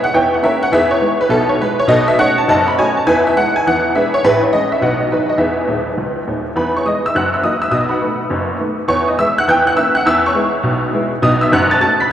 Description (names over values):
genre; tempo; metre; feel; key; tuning
jazz, stride piano; 206 BPM; 4/4; swing 64% on 8ths; E major; A4 = 440 Hz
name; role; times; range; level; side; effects
honky-tonk upright piano; solo; 0.0-12.1 s; D#1 to B6; -12 LUFS; equal; none
room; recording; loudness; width
wet cathedral reverb, RT60 5.4 s; in a vast, echoing space; -12 LUFS; side -10 dB against mid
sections
0.0-6.6 A section; 6.6-12.1 A section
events
honky-tonk piano fill 5.7-6.6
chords
0.2 Edim7; 0.7 E; 1.9 B9; 3.1 E; 3.6 E7; 4.2 Amaj7; 4.8 B; 5.4 E; 7.1 F#7; 7.7 B7; 8.9 E; 9.5 Edim7; 10.1 E; 11.2 B9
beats
0.15 0.44 | 0.73 1.03 1.32 1.61 | 1.90 2.19 2.48 2.77 | 3.06 3.36 3.65 3.94 | 4.23 4.52 4.81 5.10 | 5.39 5.69 5.98 6.27 | 6.56 6.85 7.14 7.43 | 7.73 8.02 8.31 8.60 | 8.89 9.18 9.48 9.77 | 10.06 10.35 10.64 10.93 | 11.22 11.52 11.81 12.10